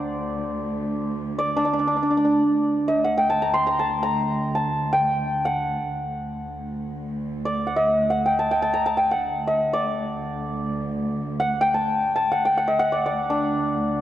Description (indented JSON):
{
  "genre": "Persian modal ensemble",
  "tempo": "free time",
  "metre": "none",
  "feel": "none",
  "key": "D dastgah homayun",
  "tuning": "A4 = 437 Hz",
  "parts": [
    { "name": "santur", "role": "melody", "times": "0.0-14.0 s", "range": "D4 to C6", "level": "-21 LUFS", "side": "equal", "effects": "none" },
    { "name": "dark studio cello section", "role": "drone", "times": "0.0-14.0 s", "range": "D2", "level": "-29 LUFS", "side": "right 1 dB", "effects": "none" }
  ],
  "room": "wet concert hall reverb, RT60 2.3 s",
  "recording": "none",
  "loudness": "-21 LUFS",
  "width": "side -12 dB against mid",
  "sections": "0.0-2.5 A section; 2.5-14.0 A section",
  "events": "none",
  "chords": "none"
}